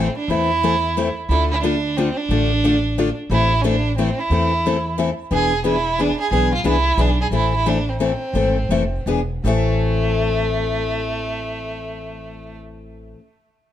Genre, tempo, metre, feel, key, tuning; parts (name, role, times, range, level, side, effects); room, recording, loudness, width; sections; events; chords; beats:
acoustic string swing (jazz manouche); 152-179 BPM; 3/4; swing 60% on 8ths; A harmonic minor; A4 = 440 Hz
warm violin; melody; 0.0-12.6 s; A3 to G#4; -22 LUFS; right 3 dB; analog delay
picked steel-string acoustic guitar; accompaniment; 0.0-13.2 s; A2 to A4; -22 LUFS; left 4 dB
upright bass; bass; 0.0-13.1 s; E1 to E2; -22 LUFS; equal
moderate studio reverb, RT60 0.6 s; -17 LUFS; side -11 dB against mid
0.0-9.5 A section; 9.5-11.8 B section
slowing down 7.3-9.5
0.0 Am; 1.3 Dm; 3.3 Am; 5.3 E7; 7.3 Am; 9.1 E7; 9.5 Am
| 0.29 0.62 0.96 | 1.29 1.63 1.96 | 2.30 2.63 2.97 | 3.30 3.64 3.97 | 4.31 4.64 4.98 | 5.31 5.64 5.98 | 6.31 6.65 6.98 | 7.32 7.65 7.99 | 8.34 8.70 9.07 | 9.45 9.85 10.24 | 10.64 11.03 11.42